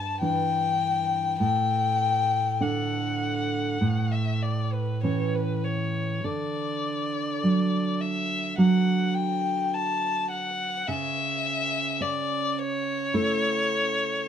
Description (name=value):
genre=romantic duo for violin and classical guitar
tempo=49-54 BPM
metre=4/4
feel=rubato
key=D major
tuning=A4 = 439 Hz
part: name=dark violin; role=melody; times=0.0-14.3 s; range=B4 to A5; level=-27 LUFS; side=left 4 dB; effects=none
part: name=nylon-string guitar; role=accompaniment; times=0.0-14.3 s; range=G2 to E4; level=-26 LUFS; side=right 2 dB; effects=none
room=light reverb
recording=band playing live in one room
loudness=-24 LUFS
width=side -8 dB against mid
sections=0.0-14.3 A section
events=none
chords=0.0 Em7/G; 1.4 D/A; 3.8 A; 6.2 D; 10.9 A/C#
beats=0.22 | 1.40 2.61 3.81 5.03 | 6.24 7.42 8.58 9.73 | 10.88 12.01 13.14 14.25